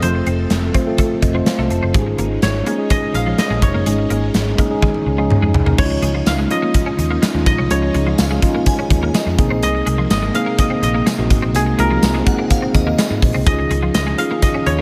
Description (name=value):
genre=1980s-style pop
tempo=125 BPM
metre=4/4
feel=straight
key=Db major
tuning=A4 = 441 Hz
part: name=koto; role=melody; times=0.0-14.8 s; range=Ab4 to F5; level=-25 LUFS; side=equal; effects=tape echo
part: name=mellow tine electric piano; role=accompaniment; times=0.0-14.8 s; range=Ab3 to A5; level=-23 LUFS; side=equal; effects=none
part: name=string machine, violins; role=sustained chords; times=0.0-14.8 s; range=C3 to A4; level=-29 LUFS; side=equal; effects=none
part: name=twelve-string electric guitar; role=riff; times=0.0-14.8 s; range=F3 to Db4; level=-29 LUFS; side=equal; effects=ensemble chorus
part: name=vintage muted picked electric bass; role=bass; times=0.0-14.8 s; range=F1 to Ab2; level=-22 LUFS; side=equal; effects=none
part: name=gated 80s drum kit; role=drums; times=0.0-14.8 s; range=crash cymbal, hi-hat, kick drum, snare drum, tambourine, toms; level=-20 LUFS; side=equal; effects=gated reverb
part: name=shimmering bell with halo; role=second line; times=8.2-13.3 s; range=Eb5 to Ab5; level=-30 LUFS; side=equal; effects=ensemble chorus, tape echo
room=light reverb, small room ambience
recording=none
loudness=-17 LUFS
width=mono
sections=0.0-5.8 A section; 5.8-14.8 B section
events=tine electric piano fill 1.0-1.9; drum fill 4.8-5.8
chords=0.0 F; 1.9 Absus4; 5.8 Dbadd9; 9.4 Abadd9; 13.5 Dbadd9